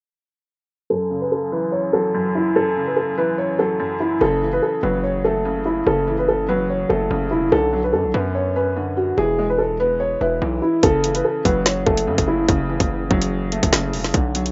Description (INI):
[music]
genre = hip hop, drill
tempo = 145 BPM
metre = 4/4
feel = half-time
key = F# minor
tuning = A4 = 440 Hz
[part]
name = dark concert grand piano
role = melody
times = 0.9-12.5 s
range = E4 to C#5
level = -22 LUFS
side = equal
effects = low-pass filter
[part]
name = felt-muted upright piano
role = accompaniment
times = 0.9-14.5 s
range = F#2 to E4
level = -27 LUFS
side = equal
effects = low-pass filter
[part]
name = distorted 808-style bass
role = bass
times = 4.2-14.5 s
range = E1 to F#2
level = -28 LUFS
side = equal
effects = distortion
[part]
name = drill drum kit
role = drums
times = 10.8-14.5 s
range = hi-hat, kick drum, snare drum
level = -22 LUFS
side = equal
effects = none
[sound]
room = moderate small room reverb, RT60 0.5 s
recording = rough home demo mix, nothing above 7.6 kHz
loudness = -20 LUFS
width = mono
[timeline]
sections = 0.9-4.2 A section; 4.2-14.5 B section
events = filter sweep 0.9-4.2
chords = 0.9 F#m7; 7.5 Bmadd9; 9.2 E; 10.8 F#m7